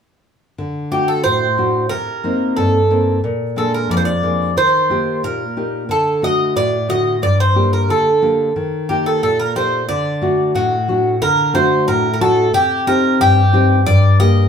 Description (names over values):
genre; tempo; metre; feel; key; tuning
greek folk, Greek bouzouki band; 90 BPM; 2/4; straight; D phrygian dominant; A4 = 439 Hz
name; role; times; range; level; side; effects
nylon-string guitar; accompaniment; 0.6-14.5 s; F2 to G4; -16 LUFS; left 1 dB; none
Greek bouzouki; melody; 0.9-14.5 s; F#4 to Eb5; -17 LUFS; right 1 dB; plate reverb
room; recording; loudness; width
wet small room reverb, RT60 0.5 s; heard from further back in the room; -13 LUFS; side -7 dB against mid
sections
0.6-11.2 A section; 11.2-14.5 B section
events
none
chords
0.6 D; 1.9 Cm7; 3.2 Bb7; 4.6 Eb; 5.9 D; 7.2 Gm; 8.6 Eb; 9.9 D; 12.5 Cm; 13.9 Gm